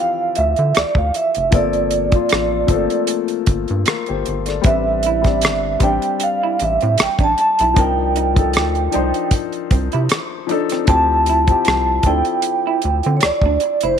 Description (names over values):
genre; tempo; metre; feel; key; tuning
R&B, neo-soul; 77 BPM; 4/4; swing 54% on 16ths; unclear; A4 = 440 Hz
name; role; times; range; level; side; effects
vibraphone with soft mallets; melody; 0.0-14.0 s; C5 to A5; -18 LUFS; right 3 dB; slapback echo
warm concert grand piano; accompaniment; 0.0-14.0 s; E3 to D5; -22 LUFS; left 13 dB; none
rubbery square bass; bass; 0.4-14.0 s; F1 to D3; -21 LUFS; equal; none
damped 70s drum kit; drums; 0.4-14.0 s; hi-hat, kick drum, rim click; -18 LUFS; equal; none
electric guitar through a small old amp; second line; 4.7-14.0 s; C4 to E4; -26 LUFS; right 12 dB; none
room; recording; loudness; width
light reverb, small room ambience; 1960s-style stereo with parts hard left and right; -15 LUFS; side -8 dB against mid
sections
0.0-14.0 A section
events
none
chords
0.0 Dm11; 1.5 Gm11; 4.6 Am11; 7.8 Cm11; 10.9 Dm11